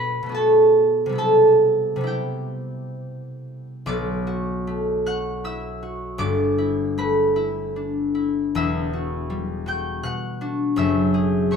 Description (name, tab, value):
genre	classical, solo harp piece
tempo	61-83 BPM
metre	3/4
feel	rubato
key	B minor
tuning	A4 = 436 Hz
part	concert harp	solo	0.0-11.6 s	E1 to G6	-20 LUFS	equal	none
room	moderate stone room reverb, RT60 1.1 s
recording	close, detailed microphones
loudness	-19 LUFS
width	side -6 dB against mid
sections	0.0-3.9 A section; 3.9-11.6 B section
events	none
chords	0.0 Bm7; 1.2 Cmaj7; 3.9 Bm7; 6.2 G69; 8.6 Em9; 10.0 Bm; 10.8 F#7sus2